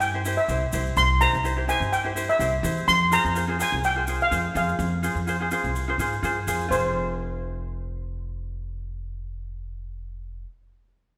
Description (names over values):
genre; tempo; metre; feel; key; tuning
calypso; 126 BPM; 4/4; swing 54% on 16ths; F harmonic minor; A4 = 435 Hz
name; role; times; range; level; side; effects
steel pan; melody; 0.0-10.4 s; C5 to C6; -26 LUFS; equal; none
upright bass; bass; 0.0-10.4 s; F1 to Ab2; -31 LUFS; equal; none
tube shaker; percussion; 0.0-6.9 s; none; -41 LUFS; equal; none
ukulele; accompaniment; 0.1-10.5 s; E4 to C5; -31 LUFS; equal; none
room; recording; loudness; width
wet concert hall reverb, RT60 2.1 s; recorded in a church or concert hall; -24 LUFS; mono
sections
0.0-6.7 A section; 6.7-10.5 B section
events
none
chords
0.0 C; 2.9 Fm